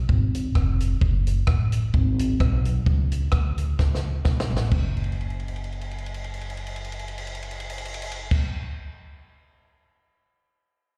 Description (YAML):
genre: ska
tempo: 130 BPM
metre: 4/4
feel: swing 55% on 8ths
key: unclear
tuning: A4 = 440 Hz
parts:
  - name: upright bass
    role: bass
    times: 0.0-8.4 s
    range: E#1 to D2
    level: -27 LUFS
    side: equal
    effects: none
  - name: compact cocktail drum kit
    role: drums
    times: 0.1-9.9 s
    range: crash cymbal, hi-hat, kick drum, ride cymbal, rim click, snare drum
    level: -28 LUFS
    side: equal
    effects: none
room: little or no reverb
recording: live gig heard through the venue's PA, recital hall reverb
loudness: -25 LUFS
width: mono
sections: 0.0-4.7 A section; 4.7-8.4 B section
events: drum fill 3.8-4.7, 5.0-8.3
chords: none